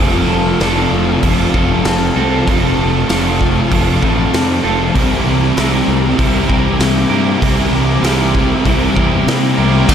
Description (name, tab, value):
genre	rock, shoegaze and dream pop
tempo	97 BPM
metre	4/4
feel	straight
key	unclear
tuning	A4 = 441 Hz
part	electric guitar through a small old amp	arpeggios	0.0-9.9 s	F3 to A4	-22 LUFS	left 1 dB	analog chorus, ping-pong delay
part	crunchy overdriven guitar	riff	0.0-9.9 s	C3 to Bb4	-17 LUFS	right 6 dB	reverse reverb
part	thick fuzz guitar	riff	0.0-9.9 s	F2 to D4	-17 LUFS	left 6 dB	distortion, lush chorus
part	growling fingered electric bass	bass	0.0-9.9 s	F1 to C3	-19 LUFS	equal	overdrive
part	raw garage drum kit	drums	0.6-9.9 s	crash cymbal, hi-hat, kick drum, snare drum	-18 LUFS	equal	none
room	wet cathedral reverb, RT60 6.5 s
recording	dreamy mix soaked in reverb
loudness	-11 LUFS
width	side -8 dB against mid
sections	0.0-9.9 A section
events	none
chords	0.0 F6; 4.9 C7